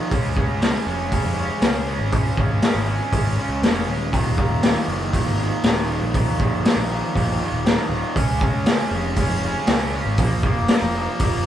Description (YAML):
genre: classic rock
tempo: 119 BPM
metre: 4/4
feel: straight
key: unclear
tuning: A4 = 439 Hz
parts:
  - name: raw garage guitar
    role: riff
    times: 0.0-11.5 s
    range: Eb2 to Db4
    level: -24 LUFS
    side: equal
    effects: overdrive
  - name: fuzz picked electric bass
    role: bass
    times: 0.1-11.4 s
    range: Eb1 to Db2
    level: -25 LUFS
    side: equal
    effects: overdrive
  - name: raw garage drum kit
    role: drums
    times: 0.1-11.3 s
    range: hi-hat, kick drum, snare drum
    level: -21 LUFS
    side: equal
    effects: none
room: moderate studio ambience, RT60 0.5 s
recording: band playing live in one room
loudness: -18 LUFS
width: side -11 dB against mid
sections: 0.0-11.5 A section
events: none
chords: 0.1 Db; 4.1 Eb5; 8.2 Db; 10.2 Bb5